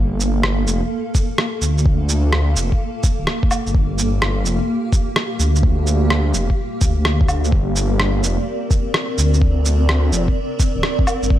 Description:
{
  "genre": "future garage",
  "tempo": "127 BPM",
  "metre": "4/4",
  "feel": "swing 67% on 16ths",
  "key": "G minor",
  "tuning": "A4 = 437 Hz",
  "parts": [
    { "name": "granular cloud pad", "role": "sustained chords", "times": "0.0-11.4 s", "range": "Bb3 to F5", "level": "-24 LUFS", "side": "right 1 dB", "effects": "built-in reverb, vintage 12-bit sampler grit, sidechain pumping" },
    { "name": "swelling detuned saw bass", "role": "bass", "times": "0.0-11.4 s", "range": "D1 to D2", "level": "-18 LUFS", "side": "equal", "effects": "sidechain pumping" },
    { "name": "electronic shaker, rim click and woodblock", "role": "drums", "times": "0.2-11.3 s", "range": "none", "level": "-22 LUFS", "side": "right 1 dB", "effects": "overdrive, small room reverb" },
    { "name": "electronic kick drum", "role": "drums", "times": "1.1-11.4 s", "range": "none", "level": "-17 LUFS", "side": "equal", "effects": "overdrive, small room reverb" }
  ],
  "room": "little or no reverb",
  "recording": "none",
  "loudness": "-16 LUFS",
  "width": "side -13 dB against mid",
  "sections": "0.0-11.4 A section",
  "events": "none",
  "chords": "0.0 Gm9; 7.5 Bbadd9"
}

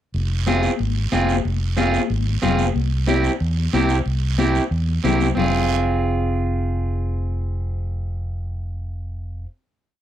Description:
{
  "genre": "latin, cumbia",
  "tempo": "184 BPM",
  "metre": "4/4",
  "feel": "straight",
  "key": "F minor",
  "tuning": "A4 = 438 Hz",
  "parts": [
    { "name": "fingered electric bass", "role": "bass", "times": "0.1-9.4 s", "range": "F1 to E2", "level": "-22 LUFS", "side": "equal", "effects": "none" },
    { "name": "congas", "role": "percussion", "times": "0.1-5.4 s", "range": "none", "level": "-26 LUFS", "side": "left 14 dB", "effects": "none" },
    { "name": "guiro", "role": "percussion", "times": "0.1-5.4 s", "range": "none", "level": "-34 LUFS", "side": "right 15 dB", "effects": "none" },
    { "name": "electric guitar at the edge of break-up", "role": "accompaniment", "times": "0.5-9.5 s", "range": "C4 to Ab4", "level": "-21 LUFS", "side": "right 2 dB", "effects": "none" }
  ],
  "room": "little or no reverb",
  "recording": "dry, close 1970s-style studio recording",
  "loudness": "-19 LUFS",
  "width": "side -11 dB against mid",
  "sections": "0.1-5.4 groove; 5.4-8.0 final chord",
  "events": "none",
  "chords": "0.1 Fm; 2.8 C; 5.4 Fm"
}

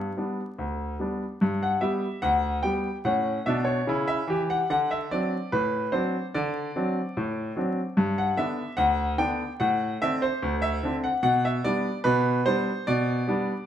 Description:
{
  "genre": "ragtime piano",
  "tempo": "73 BPM",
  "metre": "2/4",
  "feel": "straight",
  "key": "G major",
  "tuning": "A4 = 440 Hz",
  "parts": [
    { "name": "bright concert grand piano", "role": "solo", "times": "0.0-13.7 s", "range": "D2 to G5", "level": "-24 LUFS", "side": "equal", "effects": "none" }
  ],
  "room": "wet stone room reverb, RT60 1.1 s",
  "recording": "band playing live in one room, vinyl crackle",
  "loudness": "-24 LUFS",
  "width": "side -10 dB against mid",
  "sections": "0.0-1.4 A section; 1.4-13.7 A section",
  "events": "none",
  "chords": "0.0 G; 3.0 A7; 4.7 D7; 8.0 G; 9.6 D5/A; 11.2 G/B"
}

